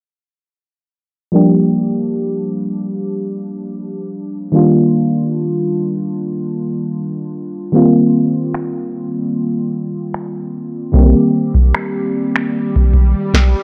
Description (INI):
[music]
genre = contemporary R&B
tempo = 75 BPM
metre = 4/4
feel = swing 54% on 16ths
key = G minor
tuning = A4 = 440 Hz
[part]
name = FM electric piano with soft pad layer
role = accompaniment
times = 1.3-13.4 s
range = D3 to G4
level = -17 LUFS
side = equal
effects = chorus
[part]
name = booming analog drum machine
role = drums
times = 8.5-13.5 s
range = finger snaps, kick drum, snare drum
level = -13 LUFS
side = equal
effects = none
[part]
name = swell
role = sound effects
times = 12.1-13.6 s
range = none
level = -28 LUFS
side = equal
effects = none
[sound]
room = light reverb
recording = dry, gritty hardware recording, transformer saturation, low-pass filter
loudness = -16 LUFS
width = mono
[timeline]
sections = 1.3-13.6 A section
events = filter sweep 1.3-13.6; swell 12.1-13.6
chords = 1.3 Gm7; 4.5 Ebmaj9; 7.7 F9sus4; 10.9 Cm7